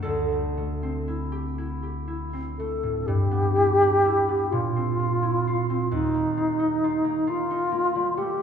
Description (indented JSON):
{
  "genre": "classical, impressionist duo for alto flute and harp",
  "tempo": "39-46 BPM (dotted quarters)",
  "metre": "6/8",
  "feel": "rubato",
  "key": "unclear",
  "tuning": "A4 = 441 Hz",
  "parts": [
    { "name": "concert harp", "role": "accompaniment", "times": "0.0-8.4 s", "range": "D2 to D5", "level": "-27 LUFS", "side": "right 2 dB", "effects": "none" },
    { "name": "wooden-headed alto flute", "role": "melody", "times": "2.6-8.4 s", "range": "Eb4 to A4", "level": "-22 LUFS", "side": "left 1 dB", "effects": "none" }
  ],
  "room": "wet scoring stage reverb, RT60 2.0 s",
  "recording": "heard from further back in the room",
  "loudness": "-22 LUFS",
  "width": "side -7 dB against mid",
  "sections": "0.0-3.1 A section; 3.1-8.4 B section",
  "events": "none",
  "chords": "0.0 D9sus4; 3.1 G6; 4.5 Bbsus2; 5.9 Ebadd9"
}